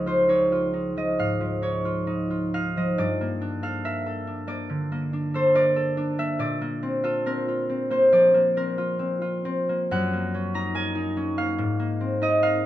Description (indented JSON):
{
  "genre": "classical, solo harp piece",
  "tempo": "62-73 BPM",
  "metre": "4/4",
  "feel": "rubato",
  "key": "unclear",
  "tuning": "A4 = 445 Hz",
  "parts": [
    { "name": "concert harp", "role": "solo", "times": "0.0-12.7 s", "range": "Db2 to Bb5", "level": "-22 LUFS", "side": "equal", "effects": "none" }
  ],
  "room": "moderate stone room reverb, RT60 1.0 s",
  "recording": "dark, warm production",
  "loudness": "-22 LUFS",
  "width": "side -13 dB against mid",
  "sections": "0.0-12.7 A section",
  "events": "none",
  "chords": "0.0 Dbadd9; 3.0 Gmadd9; 6.4 Bbadd9; 9.9 Gb69; 11.6 Ab69"
}